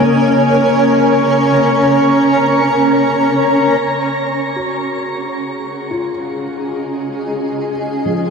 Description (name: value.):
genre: ambient.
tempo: free time.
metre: none.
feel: none.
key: Db major.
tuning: A4 = 440 Hz.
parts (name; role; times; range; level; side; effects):
granular cloud pad; sustained chords; 0.0-8.3 s; Db4 to Bb5; -13 LUFS; equal; built-in reverb.
felt-muted upright piano; arpeggios; 0.0-8.3 s; F3 to Gb4; -21 LUFS; left 4 dB; ping-pong delay.
analog drone; drone; 0.0-3.9 s; Db3; -25 LUFS; equal; chorus.
room: wet shimmer reverb, RT60 6.6 s.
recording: dark, warm production.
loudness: -12 LUFS.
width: side -5 dB against mid.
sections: 0.0-3.8 A section; 3.8-8.3 B section.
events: fade-in on ambient pad 3.8-8.3; fade-in on felt piano 3.8-8.3.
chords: 0.0 Db69; 3.8 Dbsus24.